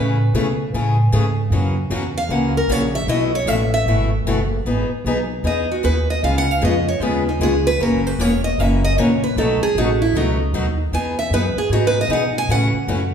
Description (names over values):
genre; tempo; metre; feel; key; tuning
acoustic string swing (jazz manouche); 153 BPM; 4/4; swing 63% on 8ths; E major; A4 = 440 Hz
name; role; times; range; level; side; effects
picked steel-string acoustic guitar; melody; 0.0-13.1 s; D#4 to G#5; -21 LUFS; right 2 dB; none
picked steel-string acoustic guitar; accompaniment; 0.0-13.0 s; B2 to G#4; -21 LUFS; left 2 dB; none
upright bass; bass; 0.0-13.1 s; E1 to B2; -20 LUFS; equal; none
room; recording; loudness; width
wet large studio reverb, RT60 1.2 s; band playing live in one room; -16 LUFS; side -7 dB against mid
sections
0.0-4.7 A section; 4.7-13.1 A section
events
steel-string acoustic guitar solo 0.0-4.7, 4.7-13.1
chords
0.0 Amaj7; 1.5 F#7; 3.1 B7sus4; 4.7 Emaj7; 6.2 C#7; 7.8 F#7; 9.4 B7; 10.9 Emaj7; 12.5 A6